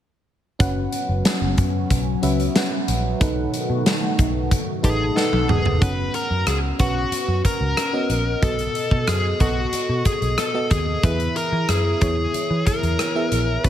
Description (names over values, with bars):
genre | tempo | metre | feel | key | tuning
1980s-style pop | 92 BPM | 4/4 | straight | unclear | A4 = 440 Hz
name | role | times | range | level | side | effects
FM electric piano | accompaniment | 0.6-13.7 s | B2 to A5 | -26 LUFS | right 1 dB | chorus
phased analog pad | sustained chords | 0.9-5.8 s | D#3 to F#4 | -28 LUFS | left 2 dB | phaser, chorus
vintage muted picked electric bass | bass | 0.6-13.7 s | E1 to E3 | -23 LUFS | equal | none
big rock drum kit | drums | 0.6-13.7 s | hi-hat, kick drum, rim click, snare drum, toms | -23 LUFS | equal | none
dark smooth lead guitar | melody | 4.8-13.7 s | F#4 to B4 | -24 LUFS | left 2 dB | overdrive, digital delay
room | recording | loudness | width
light reverb, studio reverb | none | -18 LUFS | side -11 dB against mid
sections
0.6-5.8 A section; 5.8-13.7 B section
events
drum fill 5.2-5.8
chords
0.6 F#sus4; 3.2 B7; 5.8 F#sus4; 8.4 B7; 11.0 E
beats
| 0.60 1.25 1.90 2.56 | 3.21 3.86 4.51 5.17 | 5.82 6.47 7.12 7.77 | 8.43 9.08 9.73 10.38 | 11.03 11.69 12.34 12.99 | 13.64